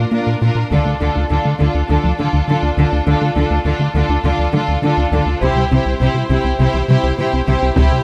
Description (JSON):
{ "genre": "cinematic, hybrid orchestral and electronic film score", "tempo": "102 BPM", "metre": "4/4", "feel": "straight", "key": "unclear", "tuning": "A4 = 440 Hz", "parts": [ { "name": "rich studio violin section", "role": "melody", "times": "0.0-8.0 s", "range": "A4 to C5", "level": "-26 LUFS", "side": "equal", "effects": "none" }, { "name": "rich symphonic violin section", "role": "second line", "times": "0.0-8.0 s", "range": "F4 to G4", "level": "-25 LUFS", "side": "equal", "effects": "none" }, { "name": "rich symphonic viola section", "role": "accompaniment", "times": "0.0-8.0 s", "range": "D4 to E4", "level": "-27 LUFS", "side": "equal", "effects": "none" }, { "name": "tight sequenced synth", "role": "arpeggios", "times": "0.0-8.0 s", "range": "C3 to Bb4", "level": "-28 LUFS", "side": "equal", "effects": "none" }, { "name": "rubbery square bass", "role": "riff", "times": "0.0-8.0 s", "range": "C2 to Bb3", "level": "-20 LUFS", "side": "equal", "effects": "none" }, { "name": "rich symphonic cello section", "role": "bass", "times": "0.1-7.9 s", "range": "Bb2 to D3", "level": "-22 LUFS", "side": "equal", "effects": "none" }, { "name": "taiko ensemble", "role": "drums", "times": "0.7-1.9, 5.4-8.0 s", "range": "none", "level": "-22 LUFS", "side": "equal", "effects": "none" } ], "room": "light reverb", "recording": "close, detailed microphones", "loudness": "-16 LUFS", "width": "mono", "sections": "0.0-8.0 A section", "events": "none", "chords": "0.0 Bb; 0.7 Dm; 5.4 C" }